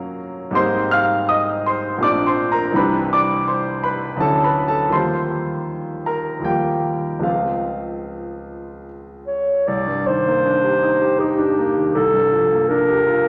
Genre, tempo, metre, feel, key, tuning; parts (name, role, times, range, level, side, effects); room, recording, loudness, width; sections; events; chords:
classical, impressionist duo for clarinet and grand piano; 73-84 BPM; 3/4; rubato; C minor; A4 = 440 Hz
clear concert grand piano; accompaniment; 0.0-13.3 s; Bb1 to F6; -21 LUFS; equal
mellow clarinet; melody; 9.3-13.3 s; G4 to D5; -19 LUFS; equal
wet scoring stage reverb, RT60 1.9 s; -19 LUFS; mono
0.0-9.7 A section; 9.7-13.3 B section
0.0 Gbmaj7; 0.6 Abmaj9; 2.0 Bbmaj9; 2.8 Cmaj9; 4.2 Dmaj9; 4.9 Eb69; 7.2 Dbmaj7; 9.7 Cm9; 12.0 Gm9/C